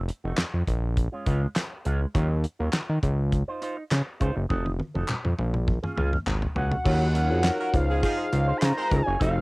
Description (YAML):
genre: early-eighties boogie funk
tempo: 102 BPM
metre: 4/4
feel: straight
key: Db major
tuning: A4 = 440 Hz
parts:
  - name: fat analog bass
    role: bass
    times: 0.0-9.4 s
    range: F1 to Eb3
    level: -24 LUFS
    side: equal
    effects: none
  - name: electric guitar with an envelope filter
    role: riff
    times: 0.1-9.4 s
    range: Gb3 to Db5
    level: -34 LUFS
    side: right 2 dB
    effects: lush chorus
  - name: damped 70s drum kit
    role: drums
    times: 0.1-9.4 s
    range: crash cymbal, handclaps, hi-hat, kick drum, snare drum, toms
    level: -28 LUFS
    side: equal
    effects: cassette tape
  - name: group handclap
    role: percussion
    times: 0.4-6.4 s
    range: none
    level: -34 LUFS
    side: left 1 dB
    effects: none
  - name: fat analog lead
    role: melody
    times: 6.6-9.4 s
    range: F5 to C6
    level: -28 LUFS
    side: equal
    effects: cassette tape
  - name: mellow tine electric piano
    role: accompaniment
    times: 6.9-9.4 s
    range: Eb4 to Db5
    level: -30 LUFS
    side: left 2 dB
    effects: medium stereo tremolo
  - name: warm horn section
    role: second line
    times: 7.3-9.0 s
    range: F3 to C5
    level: -31 LUFS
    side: right 1 dB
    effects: none
room: little or no reverb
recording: home recording on cassette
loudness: -23 LUFS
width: side -25 dB against mid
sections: 0.0-6.9 A section; 6.9-9.4 B section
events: drum fill 4.5-6.9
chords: 0.0 F7b9; 0.7 Bbm7; 2.1 Ebm9; 3.0 Dbmaj9; 4.5 F7b9; 5.4 Bbm7; 6.3 Ab7sus4; 6.9 Ebm9; 7.7 Dbmaj9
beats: 0.38 0.97 1.56 | 2.15 2.74 3.32 3.91 | 4.50 5.09 5.68 6.26 | 6.85 7.44 8.03 8.62 | 9.21